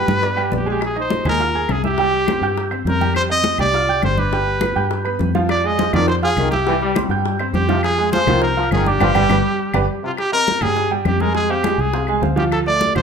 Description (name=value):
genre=latin, salsa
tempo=205 BPM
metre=4/4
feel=straight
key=C minor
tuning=A4 = 440 Hz
part: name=bright trumpet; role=melody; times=0.0-13.0 s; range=F4 to Eb5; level=-20 LUFS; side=equal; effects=none
part: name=bright upright piano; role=accompaniment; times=0.0-13.0 s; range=F3 to Ab6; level=-22 LUFS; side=right 4 dB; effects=none
part: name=fingered electric bass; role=bass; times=0.0-13.0 s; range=G1 to G2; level=-22 LUFS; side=left 1 dB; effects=none
part: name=congas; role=percussion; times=0.1-13.0 s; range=none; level=-25 LUFS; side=left 1 dB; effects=none
part: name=bongos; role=percussion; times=0.2-13.0 s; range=none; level=-29 LUFS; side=left 6 dB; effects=none
part: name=claves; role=percussion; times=0.4-13.0 s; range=none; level=-32 LUFS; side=left 4 dB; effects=none
part: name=bright trombone section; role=second line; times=5.8-10.1 s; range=C3 to G3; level=-23 LUFS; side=left 3 dB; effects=none
room=moderate large studio reverb, RT60 0.8 s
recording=band playing live in one room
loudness=-15 LUFS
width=side -6 dB against mid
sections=0.8-10.2 A section; 10.2-13.0 B section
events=band accent 9.0-10.2; drum fill 9.7-10.2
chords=0.0 G; 0.8 Bb7sus4; 2.0 C5; 3.2 Fsus2; 4.3 G7; 5.5 Fm; 6.7 C5; 7.8 Fm7; 9.0 G; 10.2 Cm; 11.3 Fm; 12.5 Dm